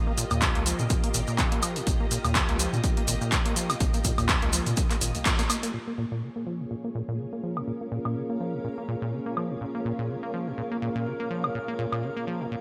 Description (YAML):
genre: acid house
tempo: 124 BPM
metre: 4/4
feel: swing 56% on 16ths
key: Bb dorian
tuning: A4 = 440 Hz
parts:
  - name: string machine, full ensemble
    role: sustained chords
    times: 0.0-12.6 s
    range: Bb3 to Eb5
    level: -37 LUFS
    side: equal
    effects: ensemble chorus, sidechain pumping
  - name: saturated sub bass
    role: bass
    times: 0.0-5.1 s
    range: Ab1 to Bb2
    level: -32 LUFS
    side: equal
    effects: sidechain pumping
  - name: acid bass, saw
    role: riff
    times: 0.1-12.6 s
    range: Bb1 to Bb3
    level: -34 LUFS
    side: equal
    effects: digital delay
  - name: booming analog drum machine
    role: drums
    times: 0.2-12.0 s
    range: handclaps, hi-hat, woodblock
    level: -31 LUFS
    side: equal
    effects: low-pass filter on hats, low-pass filter on perc, low-pass filter on snare, gated reverb
  - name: maracas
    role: percussion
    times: 0.2-5.7 s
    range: none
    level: -35 LUFS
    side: equal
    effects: none
  - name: electronic kick drum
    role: drums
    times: 0.4-5.4 s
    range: none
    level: -29 LUFS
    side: equal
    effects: none
  - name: granular cloud pad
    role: texture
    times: 7.4-12.6 s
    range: Db4 to F5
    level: -38 LUFS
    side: equal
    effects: built-in reverb, lush chorus, sidechain pumping
room: light reverb, digital ambience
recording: bright 1980s-style digital production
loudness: -28 LUFS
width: mono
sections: 0.0-5.7 A section; 5.7-12.6 B section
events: filter sweep on acid bass 0.0-5.7; band accent 5.3; filter sweep on drum 5.7-12.6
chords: 0.0 Bbm; 5.7 Bbm7